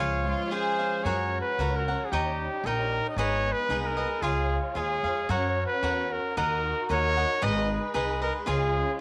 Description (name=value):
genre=mexican folk, mariachi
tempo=113 BPM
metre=2/4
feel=straight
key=F# major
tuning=A4 = 436 Hz
part: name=clear trumpet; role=melody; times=0.0-9.0 s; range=G4 to D#5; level=-31 LUFS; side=equal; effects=none
part: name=cavaquinho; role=accompaniment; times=0.0-9.0 s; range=D#4 to A#5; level=-33 LUFS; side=equal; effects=none
part: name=Celtic harp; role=arpeggios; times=0.0-3.4 s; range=F3 to Db4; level=-42 LUFS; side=equal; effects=none
part: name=upright bass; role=bass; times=0.0-8.8 s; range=G#1 to F#2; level=-33 LUFS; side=equal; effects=none
part: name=warm symphonic violin section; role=second line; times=0.3-1.0 s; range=F4 to Ab4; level=-34 LUFS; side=equal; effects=slapback echo
part: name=dark studio violin section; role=sustained chords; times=1.0-9.0 s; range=G3 to C#5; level=-38 LUFS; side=equal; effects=none
room=light reverb, small room reverb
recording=none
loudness=-27 LUFS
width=mono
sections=0.0-1.0 A section; 1.0-9.0 B section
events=none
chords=0.0 Db; 1.0 F#; 2.1 D#7; 3.2 G#m; 4.2 C#; 5.3 F#; 6.4 D#m; 7.4 G#m; 8.5 C#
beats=0.50 | 1.04 1.58 | 2.12 2.64 | 3.17 3.69 | 4.22 4.75 | 5.29 5.83 | 6.36 6.89 | 7.42 7.94 | 8.47 9.00